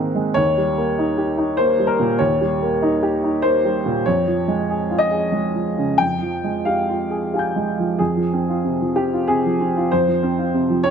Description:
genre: neoclassical minimalist piano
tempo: 88-100 BPM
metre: 3/4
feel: rubato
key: F minor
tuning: A4 = 440 Hz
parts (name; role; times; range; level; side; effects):
- clear upright piano; solo; 0.0-10.9 s; Eb2 to G6; -17 LUFS; equal; none
room: moderate recital hall reverb, RT60 1.6 s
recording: close, detailed microphones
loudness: -17 LUFS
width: side -7 dB against mid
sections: 0.0-8.0 A section; 8.0-10.9 B section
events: none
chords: 0.4 Eb; 4.1 Db/F; 6.0 Fmadd9; 8.0 Fm

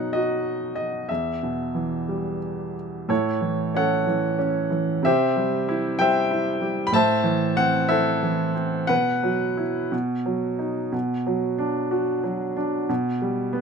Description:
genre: classical, lyrical solo piano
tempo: 58-64 BPM (dotted quarters)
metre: 6/8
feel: rubato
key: unclear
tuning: A4 = 440 Hz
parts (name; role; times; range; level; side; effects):
- clear baby grand piano; solo; 0.0-13.6 s; E2 to B5; -21 LUFS; right 1 dB; none
room: little or no reverb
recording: close, detailed microphones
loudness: -21 LUFS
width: side -6 dB against mid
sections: 0.0-3.1 A section; 3.1-13.6 B section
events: none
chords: 0.0 B; 1.1 Em; 3.1 A; 5.1 C; 6.9 Am; 8.9 Bsus4; 9.9 B; 10.9 Bm; 12.9 G/B

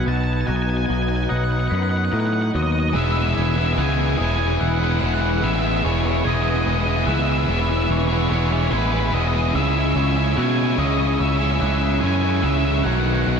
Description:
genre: post-rock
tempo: 73 BPM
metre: 4/4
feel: straight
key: E major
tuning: A4 = 440 Hz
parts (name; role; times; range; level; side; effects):
- octave-fuzz lead guitar; melody; 0.0-13.4 s; B4 to A5; -26 LUFS; equal; distortion, ping-pong delay
- analog string pad; sustained chords; 0.0-13.4 s; F#3 to C#6; -30 LUFS; equal; ensemble chorus
- glockenspiel with rubber mallets; arpeggios; 0.0-13.4 s; D#6 to G#6; -32 LUFS; right 2 dB; ping-pong delay
- twangy electric guitar; arpeggios; 0.0-2.9 s; B2 to D#4; -29 LUFS; left 2 dB; ensemble chorus, ping-pong delay
- overdriven picked electric bass; bass; 0.0-13.4 s; E1 to B2; -21 LUFS; equal; none
- distorted electric guitar; riff; 2.9-13.4 s; B2 to G#4; -24 LUFS; right 10 dB; distortion
- overdriven electric guitar; riff; 2.9-13.4 s; B2 to E4; -24 LUFS; left 10 dB; none
room: moderate lush hall reverb, RT60 2.7 s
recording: dreamy mix soaked in reverb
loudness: -18 LUFS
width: side -6 dB against mid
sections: 0.0-2.9 A section; 2.9-13.4 B section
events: build-up 0.0-2.9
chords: 0.0 B; 2.9 E; 9.6 C#m; 12.9 B

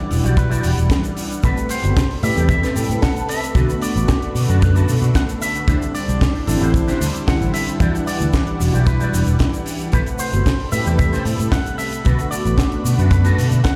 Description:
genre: nu-disco, nu disco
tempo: 113 BPM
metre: 4/4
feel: straight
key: A dorian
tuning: A4 = 442 Hz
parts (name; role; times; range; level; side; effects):
- electric guitar with an envelope filter; melody; 0.0-13.8 s; A4 to F#5; -30 LUFS; equal; dub echo
- mellow synth brass; accompaniment; 0.0-13.8 s; C3 to F#5; -26 LUFS; equal; chorus
- lush unison pad; sustained chords; 0.0-13.8 s; G3 to B5; -33 LUFS; equal; chorus, phaser, sidechain pumping
- fingered electric bass; bass; 0.1-13.6 s; E1 to B2; -20 LUFS; equal; none
- tight funk drum kit; drums; 0.1-13.8 s; hi-hat, shaker, snare drum; -29 LUFS; equal; none
- electric guitar with an envelope filter; riff; 0.2-13.7 s; C4 to A5; -31 LUFS; equal; ensemble chorus, dub echo
- kick drum; drums; 0.4-13.8 s; none; -20 LUFS; equal; none
room: studio reverb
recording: played on a big sound system in a bare room, large studio reverb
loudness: -18 LUFS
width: mono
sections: 0.0-13.8 A section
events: clean electric guitar fill 2.0-3.6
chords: 0.0 Em9; 1.4 Am9; 3.6 Bm7; 5.7 D9sus4; 7.8 Em9; 9.9 Am9; 12.1 Bm7

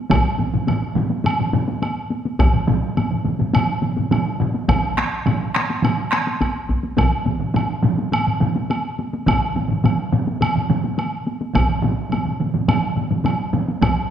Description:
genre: japanese traditional, taiko drum ensemble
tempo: 105 BPM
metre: 4/4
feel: straight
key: none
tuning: none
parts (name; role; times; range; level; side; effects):
- taiko ensemble; percussion; 0.1-14.0 s; none; -24 LUFS; left 2 dB; none
- taiko ensemble; percussion; 0.1-14.0 s; none; -23 LUFS; left 3 dB; none
- taiko ensemble; percussion; 0.1-14.0 s; none; -22 LUFS; right 4 dB; none
- taiko ensemble; percussion; 0.1-14.0 s; none; -21 LUFS; equal; none
- woodblock; percussion; 0.1-14.0 s; none; -26 LUFS; right 1 dB; none
room: wet scoring stage reverb, RT60 1.5 s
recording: none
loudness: -18 LUFS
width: side -9 dB against mid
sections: 0.0-14.1 A section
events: none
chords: none

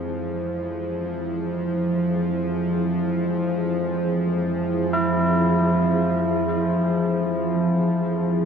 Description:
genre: dark ambient drone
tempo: free time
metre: none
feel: none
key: F harmonic minor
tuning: A4 = 440 Hz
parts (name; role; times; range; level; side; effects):
- deep dark ambient pad; sustained chords; 0.0-8.5 s; F3 to C5; -23 LUFS; equal; chorus, built-in reverb
- bowed-like drone; drone; 0.0-8.5 s; F2 to F3; -25 LUFS; right 1 dB; built-in reverb
- tubular bells; arpeggios; 4.9-8.5 s; E4; -25 LUFS; left 1 dB; tape echo
room: wet cathedral reverb, RT60 6.7 s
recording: dark, warm production, lossy compression artefacts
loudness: -20 LUFS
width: side -7 dB against mid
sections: 0.0-8.4 A section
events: fade-in on synth drone 0.0-8.4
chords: 0.0 Fm

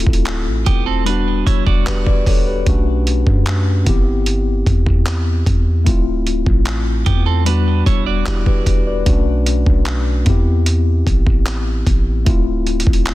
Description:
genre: contemporary R&B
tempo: 75 BPM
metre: 4/4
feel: straight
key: unclear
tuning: A4 = 440 Hz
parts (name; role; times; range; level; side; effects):
- mellow tine electric piano; accompaniment; 0.0-13.1 s; G3 to D5; -21 LUFS; left 5 dB; medium stereo tremolo
- soft 808-style bass; bass; 0.0-13.1 s; D1 to F#2; -17 LUFS; equal; none
- dusty soul sampler-style drum kit; drums; 0.0-13.1 s; handclaps, hi-hat, kick drum; -16 LUFS; equal; overdrive
- clean electric guitar; arpeggios; 0.7-9.0 s; B3 to D5; -24 LUFS; right 12 dB; spring reverb, digital delay
room: digital ambience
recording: dense, heavily limited modern master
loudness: -14 LUFS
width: side -16 dB against mid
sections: 0.0-13.1 A section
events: none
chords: 0.0 Dm9; 1.1 Em9; 2.7 Bm9; 3.9 Cmaj7/G; 5.9 Dm9; 7.5 Em9; 9.1 Bm9; 10.3 Am9; 12.3 Dm9

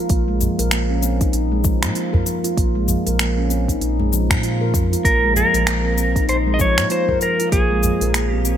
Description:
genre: organic downtempo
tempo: 97 BPM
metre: 4/4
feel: swing 59% on 16ths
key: Bb minor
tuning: A4 = 439 Hz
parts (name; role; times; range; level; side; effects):
- handpan; arpeggios; 0.0-8.6 s; F3 to Bb4; -21 LUFS; equal; digital delay
- warm sub bass; bass; 0.1-8.6 s; Bb1 to Bb2; -21 LUFS; equal; tube saturation, sidechain pumping
- afro-pop drum kit; drums; 0.1-8.6 s; cabasa, finger snaps, hi-hat; -23 LUFS; left 1 dB; none
- electronic kick drum; drums; 0.1-7.7 s; none; -20 LUFS; equal; none
- udu; percussion; 0.4-8.0 s; none; -25 LUFS; right 1 dB; none
- clean lap steel guitar; melody; 5.0-8.6 s; Ab4 to Eb5; -19 LUFS; equal; digital delay
room: light reverb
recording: bright 1980s-style digital production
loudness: -16 LUFS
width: side -10 dB against mid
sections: 0.0-8.6 A section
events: none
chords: 0.0 Bb5; 5.0 Fm/Bb

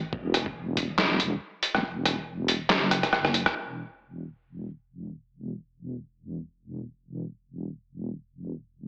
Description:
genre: deep dubstep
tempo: 140 BPM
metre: 4/4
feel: swing 56% on 16ths, half-time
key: unclear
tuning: A4 = 443 Hz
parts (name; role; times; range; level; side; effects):
- deep soft wobble bass; bass; 0.0-8.9 s; E1 to B1; -35 LUFS; equal; chorus
- electronic kick drum; drums; 0.1-0.9 s; none; -39 LUFS; equal; none
- trip hop sampler-style drum kit; drums; 0.3-3.5 s; handclaps, hi-hat, rim click, snare drum; -27 LUFS; equal; low-pass filter on snare, low-pass filter on hats, low-pass filter on room
room: moderate digital room reverb, RT60 1.3 s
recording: AM radio sound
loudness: -28 LUFS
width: mono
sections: 0.0-3.6 A section; 3.6-8.9 B section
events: kick drops out 1.8-3.6; drum fill 2.9-3.6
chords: none

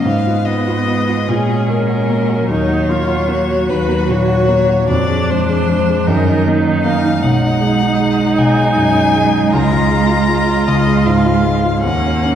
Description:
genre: classical, slow romantic movement for piano quintet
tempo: 48-53 BPM (dotted quarters)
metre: 6/8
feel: rubato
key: unclear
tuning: A4 = 440 Hz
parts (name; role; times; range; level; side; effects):
- rich violin; melody; 0.0-12.3 s; G#4 to A#5; -19 LUFS; left 4 dB; none
- clear cello; second line; 0.0-12.3 s; D#3 to A#3; -19 LUFS; right 5 dB; none
- rich viola; accompaniment; 0.0-12.3 s; Cb4 to F#4; -20 LUFS; right 1 dB; none
- warm grand piano; accompaniment; 0.0-12.3 s; B1 to Ab4; -16 LUFS; equal; none
room: wet scoring stage reverb, RT60 2.1 s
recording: heard from further back in the room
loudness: -12 LUFS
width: side -9 dB against mid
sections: 0.0-12.3 A section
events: none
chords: 0.0 Fdim/Ab; 1.3 F#/A#; 2.5 D#m7; 4.9 Ddim/F; 6.1 D#m/F#; 7.2 G#m7/B; 9.5 C#; 11.8 D#m7

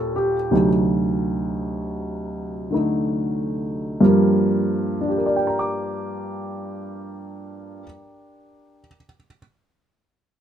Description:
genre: solo jazz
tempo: 60-83 BPM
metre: 4/4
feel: swing 67% on 8ths, rubato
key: G minor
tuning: A4 = 440 Hz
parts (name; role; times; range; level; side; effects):
- warm upright piano; solo; 0.0-9.4 s; D2 to D6; -20 LUFS; equal; none
room: moderate studio reverb, RT60 0.8 s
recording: none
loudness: -19 LUFS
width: side -9 dB against mid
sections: 0.0-4.0 A section; 4.0-7.9 B section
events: slowing down 0.0-4.0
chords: 0.0 Eb13; 0.5 D7b9; 4.0 Gm7

